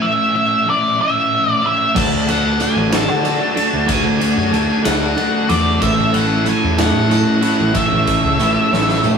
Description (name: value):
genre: indie rock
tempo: 62 BPM (dotted quarters)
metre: 6/8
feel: straight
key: A major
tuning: A4 = 440 Hz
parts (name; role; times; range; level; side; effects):
- octave-fuzz lead guitar; melody; 0.0-9.0 s; D5 to A5; -18 LUFS; equal; distortion
- overdriven electric guitar; riff; 0.0-9.2 s; A2 to F#4; -21 LUFS; left 4 dB; none
- twelve-string electric guitar; riff; 1.9-9.2 s; A3 to A4; -20 LUFS; right 4 dB; none
- ensemble organ-string; sustained chords; 2.0-9.2 s; A4 to D6; -31 LUFS; left 2 dB; none
- growling picked electric bass; bass; 2.0-9.0 s; A1 to D3; -20 LUFS; equal; overdrive
- big rock drum kit; drums; 2.0-9.2 s; crash cymbal, kick drum, ride cymbal, snare drum, toms; -20 LUFS; equal; none
- tambourine; percussion; 2.0-9.2 s; none; -32 LUFS; right 4 dB; none
room: moderate stone room reverb, RT60 1.5 s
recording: rough rehearsal-room recording, tube saturation, small room ambience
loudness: -13 LUFS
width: side -6 dB against mid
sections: 0.0-9.2 A section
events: drum fill 8.7-9.2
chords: 0.0 A; 2.0 D; 5.8 A